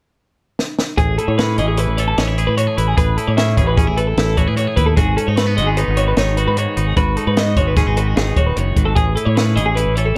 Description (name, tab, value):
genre	math rock and midwest emo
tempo	150 BPM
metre	5/4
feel	straight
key	A lydian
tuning	A4 = 438 Hz
part	compact cocktail drum kit	drums	0.6-10.1 s	hi-hat, kick drum, snare drum	-21 LUFS	equal	none
part	twangy electric guitar	accompaniment	1.0-10.2 s	F#2 to A4	-25 LUFS	equal	none
part	twelve-string electric guitar	arpeggios	1.0-10.2 s	G#4 to E5	-23 LUFS	equal	analog delay
part	fingered electric bass	bass	1.0-10.1 s	D#1 to A2	-20 LUFS	equal	none
room	light reverb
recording	dark, warm production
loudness	-17 LUFS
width	mono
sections	1.0-10.2 A section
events	drum fill 0.6-1.0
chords	0.0 N.C.; 1.0 Amaj9; 5.0 G#m7; 9.0 Amaj9